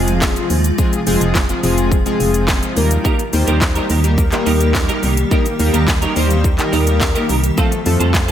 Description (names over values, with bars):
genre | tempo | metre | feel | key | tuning
dance-pop | 106 BPM | 4/4 | straight | unclear | A4 = 439 Hz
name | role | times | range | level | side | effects
chorused polysynth | accompaniment | 0.0-8.3 s | F3 to Db5 | -19 LUFS | left 2 dB | sidechain pumping
granular cloud pad | sustained chords | 0.0-8.3 s | C3 to G4 | -24 LUFS | equal | built-in reverb, sidechain pumping
solid FM bass | bass | 0.0-8.3 s | F1 to F2 | -17 LUFS | equal | sidechain pumping
house drum kit | drums | 0.1-8.3 s | handclaps, hi-hat, kick drum, shaker, snare drum | -18 LUFS | equal | none
twelve-string electric guitar | riff | 3.0-8.3 s | A3 to Bb4 | -22 LUFS | right 4 dB | ensemble chorus
room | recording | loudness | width
light reverb, digital ambience | none | -13 LUFS | side -10 dB against mid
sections
0.0-8.3 A section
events
none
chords
0.0 Fm; 2.8 Eb; 7.6 F